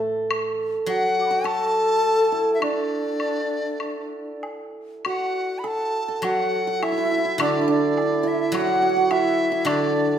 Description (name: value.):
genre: chinese traditional, Chinese chamber ensemble.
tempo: 94-107 BPM.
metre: 4/4.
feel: rubato.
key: D gong mode.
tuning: A4 = 440 Hz.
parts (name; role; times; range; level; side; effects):
hammered dulcimer; second line; 0.0-10.2 s; D4 to A4; -24 LUFS; right 5 dB; none.
guzheng; accompaniment; 0.0-2.6, 6.2-10.2 s; A2 to A3; -27 LUFS; left 2 dB; none.
woodblock; percussion; 0.3-9.8 s; none; -31 LUFS; left 3 dB; none.
bright large dizi; melody; 0.9-10.2 s; D5 to B5; -25 LUFS; equal; none.
mellow xiao; second line; 0.9-10.2 s; D4 to D6; -28 LUFS; left 4 dB; none.
room: wet recital hall reverb, RT60 1.5 s.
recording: none.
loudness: -20 LUFS.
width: side -9 dB against mid.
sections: 0.0-5.0 A section; 5.0-10.2 B section.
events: none.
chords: none.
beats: | 0.29 0.88 1.45 2.03 | 2.61 3.20 3.81 4.43 | 5.05 5.64 6.23 6.82 | 7.40 7.97 8.53 9.10 | 9.66.